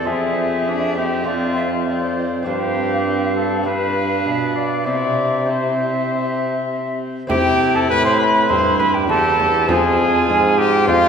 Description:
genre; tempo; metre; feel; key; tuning
classical, renaissance-style consort dance; 100 BPM; 4/4; straight; C major; A4 = 436 Hz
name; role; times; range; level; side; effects
warm cornet; melody; 0.0-11.1 s; F4 to D5; -21 LUFS; left 3 dB; none
mellow alto recorder; second line; 0.0-11.1 s; D5 to C6; -21 LUFS; right 2 dB; none
lute; accompaniment; 0.0-11.1 s; E2 to F4; -25 LUFS; right 1 dB; none
rich viola; accompaniment; 0.0-11.1 s; C4 to G4; -25 LUFS; left 1 dB; none
warm trombone; bass; 0.0-11.1 s; E2 to C3; -22 LUFS; equal; none
frame drum; percussion; 7.3-11.1 s; none; -27 LUFS; right 2 dB; none
room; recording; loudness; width
wet church reverb, RT60 2.6 s; recorded in a church or concert hall; -16 LUFS; side -6 dB against mid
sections
0.0-7.3 A section; 7.3-11.1 A section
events
none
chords
0.1 Fm; 2.5 G7sus4; 3.7 G7; 4.9 C; 9.7 Fm

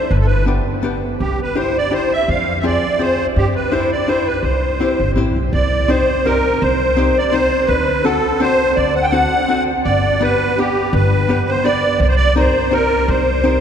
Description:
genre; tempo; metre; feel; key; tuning
musette waltz; 166 BPM; 3/4; swing 54% on 8ths; C major, C minor from 5.5 s; A4 = 439 Hz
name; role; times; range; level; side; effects
musette accordion; melody; 0.0-13.6 s; G4 to G5; -16 LUFS; right 1 dB; none
upright bass; bass; 0.1-13.6 s; G1 to G2; -19 LUFS; equal; none
archtop guitar, miked and amplified; accompaniment; 0.5-13.6 s; B3 to C5; -21 LUFS; left 2 dB; none
room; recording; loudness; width
wet cathedral reverb, RT60 5.8 s; recorded in a church or concert hall; -14 LUFS; side -8 dB against mid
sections
0.0-5.5 A section; 5.5-13.6 B section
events
none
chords
0.1 G; 1.2 Cadd9; 2.3 Fm; 3.4 G6; 4.4 C; 5.5 Cm; 7.7 D7; 9.9 G; 12.0 Cm7

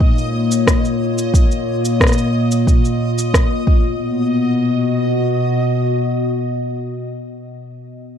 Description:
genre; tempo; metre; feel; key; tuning
folktronica; 90 BPM; 4/4; straight; B lydian; A4 = 441 Hz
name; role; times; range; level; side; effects
warbly tape-like pad; sustained chords; 0.0-7.4 s; A#2 to D#5; -17 LUFS; left 1 dB; chorus, built-in reverb
electronic kick drum; drums; 0.0-3.8 s; none; -14 LUFS; equal; none
backwards swelling texture; texture; 0.0-4.0 s; D#5 to D#6; -29 LUFS; right 1 dB; built-in reverb
electronic shaker and rim click; drums; 0.2-3.5 s; none; -18 LUFS; equal; none
room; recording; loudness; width
little or no reverb; dry, close 1970s-style studio recording; -14 LUFS; side -8 dB against mid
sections
0.0-4.0 A section; 4.0-6.7 B section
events
none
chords
0.0 A#m; 3.7 B

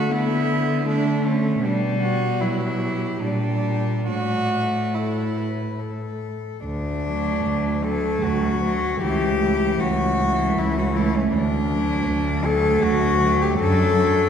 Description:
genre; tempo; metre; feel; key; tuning
classical, lyrical piece for cello ensemble; 67-82 BPM; 3/4; rubato; D major; A4 = 437 Hz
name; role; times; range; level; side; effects
clear cello; melody; 0.0-14.3 s; C#4 to D5; -24 LUFS; left 4 dB; none
clear cello; second line; 0.0-14.3 s; A3 to F#4; -26 LUFS; right 5 dB; none
rich cello; accompaniment; 0.0-14.3 s; E3 to B3; -26 LUFS; left 1 dB; none
dark cello; bass; 0.0-14.3 s; C#2 to D3; -24 LUFS; right 1 dB; none
room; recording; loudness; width
wet concert hall reverb, RT60 1.8 s; heard from further back in the room; -19 LUFS; side -8 dB against mid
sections
0.0-6.6 A section; 6.6-14.3 B section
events
none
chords
0.0 D5; 1.6 G/B; 3.2 Gm/Bb; 4.1 Asus4; 5.8 N.C.; 6.6 D; 9.0 A7/C#; 11.3 D; 13.6 D/F#

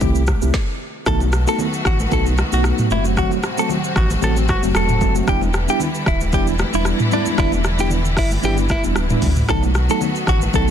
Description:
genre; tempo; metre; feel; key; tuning
afrobeats; 114 BPM; 4/4; swing 55% on 16ths; E minor; A4 = 442 Hz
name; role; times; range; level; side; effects
mellow tine electric piano; accompaniment; 0.0-10.7 s; F#3 to G4; -23 LUFS; right 1 dB; medium stereo tremolo
rich studio string section; sustained chords; 0.0-10.7 s; A2 to G4; -26 LUFS; equal; sidechain pumping
sub bass with octave; bass; 0.0-10.7 s; D1 to D2; -20 LUFS; equal; none
afro-pop drum kit; drums; 0.0-10.7 s; hi-hat, kick drum, rim click, shaker, snare drum, toms; -22 LUFS; equal; soft clipping on snare, vintage 12-bit sampler grit
congas; percussion; 0.0-10.7 s; none; -29 LUFS; left 3 dB; none
direct-recorded clean electric guitar; melody; 1.1-10.7 s; D4 to A4; -23 LUFS; equal; phaser, tape echo
room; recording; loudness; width
digital ambience; dense, heavily limited modern master; -16 LUFS; side -9 dB against mid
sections
0.0-1.1 A section; 1.1-10.7 B section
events
stop 0.5-1.1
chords
0.0 Am7; 1.1 B7; 2.9 F#dim; 5.3 Em7; 9.5 B7

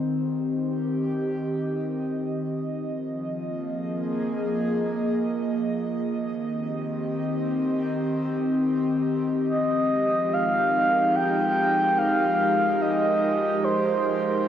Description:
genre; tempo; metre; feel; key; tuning
ambient; free time; none; none; F minor; A4 = 440 Hz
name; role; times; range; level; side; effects
airy breathy pad; sustained chords; 0.0-14.5 s; Eb3 to Eb5; -25 LUFS; equal; chorus
breathy flute-like synth lead; melody; 9.5-14.5 s; C5 to G5; -22 LUFS; equal; chorus, diffuse ambient delay
room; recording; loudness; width
wet cathedral reverb, RT60 5.4 s; in a vast, echoing space; -22 LUFS; side -10 dB against mid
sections
0.0-9.5 A section; 9.5-14.5 B section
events
filter sweep on analog synth pad 0.0-9.5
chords
0.0 Cm; 2.8 Bb5; 6.1 Cm; 9.5 Fm11

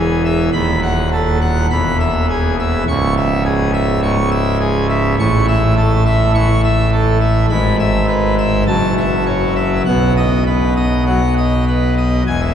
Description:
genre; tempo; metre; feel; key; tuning
classical, organ toccata; 103 BPM; 4/4; straight; unclear; A4 = 440 Hz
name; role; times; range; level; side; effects
pipe organ, full organ; solo; 0.0-12.5 s; C#1 to C#6; -13 LUFS; equal; none
room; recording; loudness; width
wet cathedral reverb, RT60 6.5 s; heard from further back in the room; -13 LUFS; side -9 dB against mid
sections
0.0-12.3 A section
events
none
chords
0.0 E; 0.5 B7/D#; 1.7 E; 2.9 C#m; 5.2 A; 7.5 E/G#; 8.7 F#m7; 9.9 B

